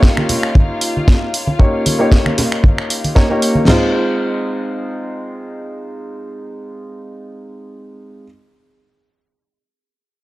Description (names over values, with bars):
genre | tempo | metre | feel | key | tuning
nu-disco, nu disco | 115 BPM | 4/4 | swing 54% on 16ths | F minor | A4 = 436 Hz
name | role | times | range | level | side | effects
warm grand piano | accompaniment | 0.0-8.3 s | Ab3 to Db5 | -19 LUFS | equal | tape echo
rich chamber string section | sustained chords | 0.0-3.7 s | F4 to F5 | -26 LUFS | left 2 dB | sidechain pumping, low-pass filter
damped 70s drum kit | drums | 0.0-3.8 s | crash cymbal, kick drum, snare drum, toms | -12 LUFS | equal | none
house drum kit | drums | 0.0-3.5 s | finger snaps, hi-hat, snare drum | -20 LUFS | right 1 dB | none
congas | percussion | 0.2-3.7 s | none | -21 LUFS | right 1 dB | none
room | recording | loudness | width
light reverb, small room ambience | dry, gritty hardware recording | -13 LUFS | side -18 dB against mid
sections
0.0-3.7 A section; 3.7-7.9 B section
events
none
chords
0.0 Eb7; 3.7 Fm7